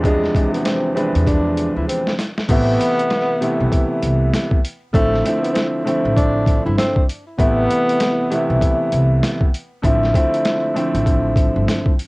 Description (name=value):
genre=hip hop, boom-bap hip-hop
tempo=98 BPM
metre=4/4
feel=swing 61% on 16ths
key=A harmonic minor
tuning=A4 = 441 Hz
part: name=breathy tenor saxophone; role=melody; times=0.0-8.8 s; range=G#3 to E4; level=-21 LUFS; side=equal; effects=high-pass filter, low-pass filter, cassette tape
part: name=dark baby grand piano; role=accompaniment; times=0.0-11.9 s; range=E2 to B4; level=-19 LUFS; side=equal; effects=high-pass filter, low-pass filter, cassette tape
part: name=upright bass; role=bass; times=0.0-11.7 s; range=G1 to E2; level=-20 LUFS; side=equal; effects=none
part: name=boom bap sampler-style drum kit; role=drums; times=0.0-12.1 s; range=crash cymbal, hi-hat, kick drum, snare drum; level=-19 LUFS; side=equal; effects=overdrive, cassette tape
room=little or no reverb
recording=home recording on cassette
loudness=-15 LUFS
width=side -23 dB against mid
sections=0.0-2.5 A section; 2.5-12.1 B section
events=drum fill 1.3-2.5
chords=0.0 E7b9b13; 2.5 Amadd9; 4.9 Dm7/A; 7.4 Amadd9; 9.8 Dm7/A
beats=| 0.04 0.65 1.26 1.88 | 2.49 3.10 3.71 4.33 | 4.94 5.55 6.16 6.78 | 7.39 8.00 8.61 9.22 | 9.84 10.45 11.06 11.67